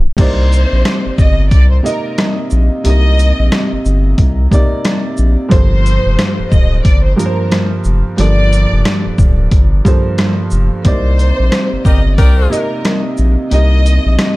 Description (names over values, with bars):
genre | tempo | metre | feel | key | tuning
hip hop, boom-bap hip-hop | 90 BPM | 4/4 | swing 62% on 16ths | C dorian | A4 = 440 Hz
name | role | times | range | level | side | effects
warm upright piano | accompaniment | 0.0-14.4 s | G2 to Eb5 | -17 LUFS | right 1 dB | cassette tape
saturated sub bass | bass | 0.0-14.2 s | D1 to C2 | -12 LUFS | equal | none
trip hop sampler-style drum kit | drums | 0.1-14.4 s | crash cymbal, hi-hat, kick drum, rim click, shaker, snare drum | -13 LUFS | equal | none
warm symphonic violin section | melody | 0.2-14.3 s | Bb4 to Eb5 | -21 LUFS | left 1 dB | ping-pong delay
clear saxophone section | stabs | 11.9-12.6 s | Eb4 to Bb4 | -23 LUFS | left 4 dB | ping-pong delay
room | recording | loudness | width
little or no reverb | tape stop | -10 LUFS | side -20 dB against mid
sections
0.2-14.4 A section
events
drum fill 0.0; tape stop 0.0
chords
0.2 Cm9; 5.5 Gm11; 10.8 Cm9